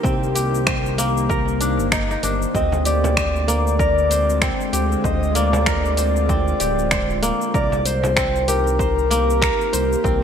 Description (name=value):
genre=organic downtempo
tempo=96 BPM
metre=4/4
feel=swing 58% on 16ths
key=C minor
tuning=A4 = 440 Hz
part: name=bowed-like drone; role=sustained chords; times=0.0-10.2 s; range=D3 to C5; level=-25 LUFS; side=left 2 dB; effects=built-in reverb, sidechain pumping
part: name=kora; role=arpeggios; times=0.0-10.2 s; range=Bb3 to C5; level=-24 LUFS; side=equal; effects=ping-pong delay
part: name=smooth synth bass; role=bass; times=0.0-10.2 s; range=D1 to D2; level=-22 LUFS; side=equal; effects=none
part: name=electronic kick drum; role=drums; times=0.0-10.2 s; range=none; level=-25 LUFS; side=equal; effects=overdrive
part: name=deep house drum kit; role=drums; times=0.1-10.2 s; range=cabasa, finger snaps, hi-hat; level=-24 LUFS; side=left 1 dB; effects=overdrive, gated reverb
part: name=breathy flute-like synth lead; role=melody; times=2.5-10.2 s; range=Bb4 to Eb5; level=-22 LUFS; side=left 1 dB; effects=wide subtle chorus, ping-pong delay
part: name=frame drum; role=percussion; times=2.7-8.1 s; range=none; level=-28 LUFS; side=right 3 dB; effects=none
room=moderate lush hall reverb, RT60 1.7 s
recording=bright 1980s-style digital production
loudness=-17 LUFS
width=side -8 dB against mid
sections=0.0-10.2 A section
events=none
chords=0.0 Cm9; 2.5 Dm7b5; 7.5 Cm7